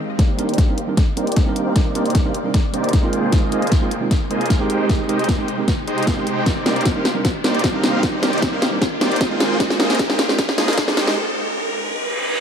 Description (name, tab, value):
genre	future bass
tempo	153 BPM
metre	4/4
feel	half-time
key	C minor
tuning	A4 = 440 Hz
part	bright tine electric piano	accompaniment	0.0-11.2 s	G3 to Bb4	-25 LUFS	right 4 dB	sidechain pumping, ping-pong delay
part	shimmering ambient pad	sustained chords	0.0-12.4 s	C3 to D5	-32 LUFS	left 1 dB	chorus, built-in reverb, sidechain pumping
part	swell, riser and reverse cymbal	sound effects	0.0-12.4 s	none	-28 LUFS	right 1 dB	none
part	supersaw chords	riff	0.2-11.1 s	Ab3 to G5	-22 LUFS	equal	sidechain pumping, low-pass filter, ping-pong delay
part	long sustained 808-style bass	bass	0.2-11.2 s	none	barely audible	none	none
part	dubstep drum kit	drums	0.2-11.2 s	hi-hat, snare drum	-22 LUFS	left 1 dB	none
part	electronic kick drum	drums	0.2-10.9 s	none	-19 LUFS	equal	overdrive
room	light reverb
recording	dark, warm production, high-pass filter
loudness	-16 LUFS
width	side -7 dB against mid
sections	0.2-12.4 A section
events	swell 0.0; build-up 0.2-12.4; drum fill 0.2-11.2; filter sweep on supersaw synth 0.2-12.4; filter sweep 0.2-12.4; riser 4.0-12.4; break 11.2-12.4; reverse cymbal 12.0-12.4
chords	0.2 Cm9; 3.1 Abmaj7; 6.5 Cm9; 9.4 Bb9sus4; 11.0 Abmaj7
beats	| 0.19 0.58 0.97 1.37 | 1.76 2.15 2.54 2.93 | 3.33 3.72 4.11 4.50 | 4.89 5.29 5.68 6.07 | 6.46 6.86 7.25 7.64 | 8.03 8.43 8.82 9.21 | 9.60 9.99 10.38 10.78 | 11.17 11.56 11.95 12.35